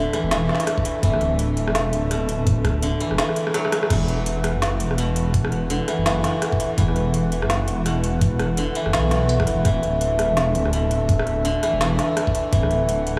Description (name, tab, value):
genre	half-time drum and bass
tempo	167 BPM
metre	4/4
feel	swing 59% on 16ths, half-time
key	unclear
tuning	A4 = 440 Hz
part	dark analog pad	sustained chords	0.0-13.2 s	D4 to F#5	-29 LUFS	equal	chorus, sidechain pumping
part	koto	arpeggios	0.0-13.2 s	B2 to F#3	-27 LUFS	equal	analog delay
part	dark detuned saw bass	bass	0.0-13.2 s	D1 to B1	-25 LUFS	equal	none
part	organic electronic drum kit	drums	0.1-13.2 s	crash cymbal, hi-hat, rim click, snare drum	-29 LUFS	equal	none
part	electronic kick drum	drums	0.8-12.6 s	none	-24 LUFS	equal	none
room	moderate huge ambient reverb, RT60 6.9 s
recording	dreamy mix soaked in reverb, small room ambience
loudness	-21 LUFS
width	mono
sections	0.0-13.2 A section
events	drum fill 3.2-3.9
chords	0.0 D5; 3.9 E5; 9.7 D